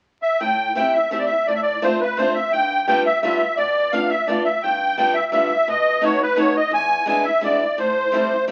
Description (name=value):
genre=musette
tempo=171 BPM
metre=3/4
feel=straight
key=A minor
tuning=A4 = 440 Hz
part: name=musette accordion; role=melody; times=0.2-8.5 s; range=B4 to G#5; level=-20 LUFS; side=equal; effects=none
part: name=picked old ladder-braced acoustic guitar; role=accompaniment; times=0.4-8.5 s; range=E2 to G4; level=-26 LUFS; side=equal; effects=none
room=moderate large studio reverb, RT60 1.2 s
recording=very old 78 rpm record, vinyl crackle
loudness=-19 LUFS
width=mono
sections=0.4-8.5 A section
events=none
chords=0.4 Am7; 1.5 Dm7/A; 2.5 G7; 3.6 Bm7b5; 4.6 G7; 5.7 B7; 6.7 E7; 7.8 Am7